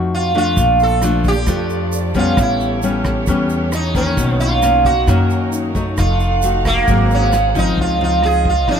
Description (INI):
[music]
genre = bossa nova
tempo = 133 BPM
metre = 4/4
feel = straight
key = unclear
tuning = A4 = 442 Hz
[part]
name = nylon-string guitar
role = accompaniment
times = 0.0-8.8 s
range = F2 to Gb4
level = -19 LUFS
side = left 4 dB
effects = none
[part]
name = upright bass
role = bass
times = 0.0-8.8 s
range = F1 to F#2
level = -19 LUFS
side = equal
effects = none
[part]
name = sitar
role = melody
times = 0.1-8.8 s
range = Bb3 to A4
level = -17 LUFS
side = right 3 dB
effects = none
[part]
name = warm symphonic violin section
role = sustained chords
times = 0.6-8.8 s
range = C#4 to Gb5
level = -27 LUFS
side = right 1 dB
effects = none
[part]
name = vintage brush drum kit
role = drums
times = 0.6-8.8 s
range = hi-hat, kick drum, rim click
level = -23 LUFS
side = equal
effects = none
[part]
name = tube shaker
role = percussion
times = 0.6-7.8 s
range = none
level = -32 LUFS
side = right 5 dB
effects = none
[sound]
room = little or no reverb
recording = close, detailed microphones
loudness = -13 LUFS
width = side -7 dB against mid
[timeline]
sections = 0.0-7.8 A section; 7.8-8.8 B section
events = none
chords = 0.0 F7b9; 0.6 Bbmaj7; 2.4 A9; 4.2 Bmaj9; 6.0 F7b9; 6.9 Ab9; 7.8 Dbmaj9